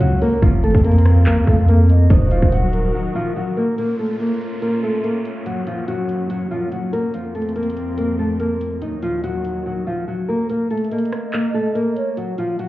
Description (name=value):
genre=hip hop, drill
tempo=143 BPM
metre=4/4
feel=half-time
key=Bb harmonic minor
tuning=A4 = 436 Hz
part: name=nylon-string guitar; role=melody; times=0.0-12.7 s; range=F3 to Eb5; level=-20 LUFS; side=left 1 dB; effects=ping-pong delay
part: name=hollow clarinet-like synth lead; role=second line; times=0.0-2.9, 10.9-12.2 s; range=Bb4 to F5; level=-28 LUFS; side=right 3 dB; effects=chorus, ping-pong delay
part: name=dark studio string section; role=sustained chords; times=0.0-10.5 s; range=Eb2 to Bb4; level=-28 LUFS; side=equal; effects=stereo widening
part: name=distorted 808-style bass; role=bass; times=0.0-2.9 s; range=Eb1 to F2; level=-14 LUFS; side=equal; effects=distortion
part: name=drill drum kit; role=drums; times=0.0-12.7 s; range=handclaps, hi-hat, kick drum, rim click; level=-17 LUFS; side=equal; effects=none
part: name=downlifter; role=sound effects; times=3.8-7.1 s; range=none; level=-40 LUFS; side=right 1 dB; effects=none
room=light reverb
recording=heard muffled through a wall, club reverb, EQ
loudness=-16 LUFS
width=side -16 dB against mid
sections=0.0-3.8 A section; 3.8-10.5 B section; 10.5-12.7 C section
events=break 2.9-3.8, 12.2-12.7; kick muted 10.5-12.7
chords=0.4 Fsus4; 2.1 Ebm; 3.8 Bbm; 5.5 Gb; 7.1 Fsus4; 8.8 Ebm; 10.5 Bbsus4; 12.2 N.C.